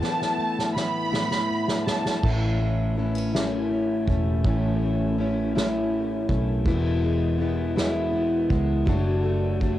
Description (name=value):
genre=six-eight pop ballad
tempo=54 BPM (dotted quarters)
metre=6/8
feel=straight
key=A major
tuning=A4 = 440 Hz
part: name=warm studio violin section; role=second line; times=0.0-2.2 s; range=A5 to B5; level=-28 LUFS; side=right 2 dB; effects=cassette tape
part: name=fingerpicked plugged-in steel-string acoustic guitar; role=accompaniment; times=0.0-9.8 s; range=E2 to E4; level=-28 LUFS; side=right 1 dB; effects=double-tracked left and right, cassette tape
part: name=fingerpicked plugged-in steel-string acoustic guitar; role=arpeggios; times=0.0-9.8 s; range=E2 to F#4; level=-28 LUFS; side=left 4 dB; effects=cassette tape, analog delay
part: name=soft-mallet drum kit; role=drums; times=0.0-9.8 s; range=crash cymbal, kick drum, ride cymbal, snare drum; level=-29 LUFS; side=equal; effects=none
part: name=vintage muted fingered electric bass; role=bass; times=2.2-9.8 s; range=E1 to C#2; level=-26 LUFS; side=equal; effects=none
room=light reverb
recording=home recording on cassette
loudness=-22 LUFS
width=side -13 dB against mid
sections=0.0-2.2 A section; 2.2-9.8 A section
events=break 0.0-2.2; drum fill 0.0-2.2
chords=0.0 Asus2; 2.2 A; 6.7 E; 8.9 D/F#